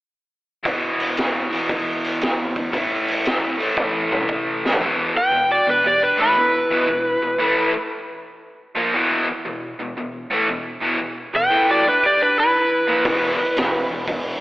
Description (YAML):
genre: blues rock power trio and southern rock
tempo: 116 BPM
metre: 4/4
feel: swing 67% on 8ths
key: E minor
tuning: A4 = 440 Hz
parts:
  - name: overdriven electric guitar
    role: riff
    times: 0.6-14.4 s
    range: E2 to A#3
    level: -22 LUFS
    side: equal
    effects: none
  - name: raw garage drum kit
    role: drums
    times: 0.7-4.8, 13.1-14.2 s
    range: hi-hat, kick drum, snare drum, toms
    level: -23 LUFS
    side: equal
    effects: none
  - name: overdriven slide guitar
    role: melody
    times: 5.2-7.7, 11.4-13.9 s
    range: B4 to G5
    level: -17 LUFS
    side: equal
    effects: none
  - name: lightly driven lead guitar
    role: second line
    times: 5.2-7.7, 11.3-13.9 s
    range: D4 to B4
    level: -26 LUFS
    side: right 2 dB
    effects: none
  - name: fuzz fingered electric bass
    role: bass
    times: 13.1-14.4 s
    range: E1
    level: -30 LUFS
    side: equal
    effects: overdrive
room: wet lush hall reverb, RT60 2.2 s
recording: big arena sound, telephone sound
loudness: -17 LUFS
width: side -18 dB against mid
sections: 0.6-4.8 A section; 4.8-14.4 B section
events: drum fill 3.8-4.8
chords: 0.6 E5; 2.7 A5; 4.8 E5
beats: | 0.65 1.17 1.69 2.21 | 2.73 3.25 3.77 4.29 | 4.81 5.33 5.84 6.36 | 6.88 7.39 7.91 8.43 | 8.94 9.46 9.97 10.48 | 11.00 11.51 12.02 12.54 | 13.05 13.56 14.07